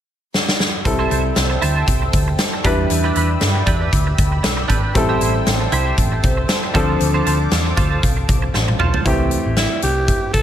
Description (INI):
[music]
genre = 1980s-style pop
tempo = 117 BPM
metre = 4/4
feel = swing 55% on 16ths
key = C major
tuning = A4 = 438 Hz
[part]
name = huge arena drum kit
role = drums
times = 0.3-10.4 s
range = hi-hat, kick drum, snare drum, toms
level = -19 LUFS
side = equal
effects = gated reverb
[part]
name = clear baby grand piano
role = accompaniment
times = 0.8-10.4 s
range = E3 to B4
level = -22 LUFS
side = left 1 dB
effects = none
[part]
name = twelve-string electric guitar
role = riff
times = 0.8-9.0 s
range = D4 to C5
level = -25 LUFS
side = right 6 dB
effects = analog chorus, tape echo
[part]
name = phased analog pad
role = sustained chords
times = 1.3-9.0 s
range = C5 to E6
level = -27 LUFS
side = equal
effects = phaser, chorus
[part]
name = hollow-body short-scale picked electric bass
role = bass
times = 0.9-10.4 s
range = Ab1 to G2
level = -20 LUFS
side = equal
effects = none
[part]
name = breathy alto saxophone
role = melody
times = 9.6-10.4 s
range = E4 to A4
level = -20 LUFS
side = right 1 dB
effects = none
[sound]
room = light reverb, small room ambience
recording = lossy compression artefacts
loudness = -15 LUFS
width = side -10 dB against mid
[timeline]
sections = 0.9-9.1 A section; 9.1-10.4 B section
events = drum fill 0.3-0.9, 8.5-9.1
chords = 0.0 N.C.; 0.9 C6; 2.6 Em7; 5.0 Am7; 6.8 Dm7; 9.1 C6